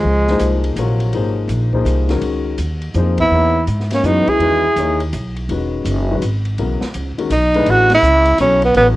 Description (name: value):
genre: modal jazz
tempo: 165 BPM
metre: 3/4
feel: swing 65% on 8ths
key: unclear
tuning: A4 = 437 Hz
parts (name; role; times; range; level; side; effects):
- breathy tenor saxophone; melody; 0.0-0.6, 3.2-5.0, 7.3-8.9 s; Ab3 to G#4; -13 LUFS; right 1 dB; cassette tape
- breathy trombone; second line; 0.0-0.6, 3.2-5.0 s; F3 to E4; -24 LUFS; left 5 dB; cassette tape
- upright bass; bass; 0.0-9.0 s; E1 to G#2; -18 LUFS; equal; none
- clear upright piano; accompaniment; 0.3-9.0 s; C3 to Db5; -22 LUFS; left 5 dB; cassette tape
- open jazz drum kit; drums; 0.3-8.9 s; hi-hat, kick drum, ride cymbal, snare drum; -30 LUFS; equal; cassette tape
room: light reverb, studio reverb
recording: home recording on cassette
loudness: -14 LUFS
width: side -17 dB against mid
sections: 0.0-7.7 A section; 7.7-9.0 B section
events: drum fill 3.0-3.3; band accent 3.1, 7.9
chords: 0.0 Dbmaj9; 3.3 Emaj9; 7.7 Amaj9